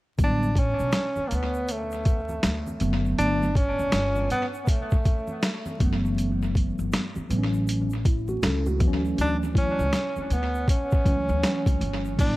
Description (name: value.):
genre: hip hop, jazz-hop.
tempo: 80 BPM.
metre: 4/4.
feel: swing 63% on 16ths.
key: D major.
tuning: A4 = 444 Hz.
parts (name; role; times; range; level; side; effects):
breathy tenor saxophone; melody; 0.2-12.4 s; A3 to D4; -28 LUFS; equal; tape echo.
mellow tine electric piano; accompaniment; 0.2-12.4 s; D3 to A4; -28 LUFS; equal; medium stereo tremolo, tape echo.
upright bass; bass; 0.2-12.4 s; F#1 to D2; -28 LUFS; equal; none.
boom bap sampler-style drum kit; drums; 0.2-12.4 s; crash cymbal, hi-hat, kick drum, snare drum; -25 LUFS; equal; tape echo.
egg shaker and congas; percussion; 0.2-12.4 s; none; -40 LUFS; right 1 dB; tape echo.
room: light reverb, small room ambience.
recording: echo-heavy mix, vinyl crackle.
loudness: -22 LUFS.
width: side -18 dB against mid.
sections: 0.2-12.2 A section.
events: none.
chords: 0.2 A13sus4; 2.4 D6; 3.2 Gmaj9; 5.8 F#m7; 8.8 Dmaj9.